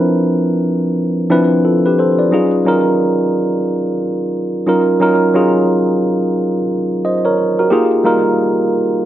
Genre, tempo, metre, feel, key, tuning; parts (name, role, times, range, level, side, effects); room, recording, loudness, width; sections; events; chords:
R&B; 89 BPM; 4/4; swing 60% on 16ths; A4 = 440 Hz
tine electric piano; solo; 0.0-9.1 s; F3 to Eb5; -12 LUFS; equal; slapback echo
light reverb; -12 LUFS; side -12 dB against mid
0.0-2.3 A section; 2.3-9.1 B section
0.0 Dm9; 2.3 Ebm11; 7.7 Fm11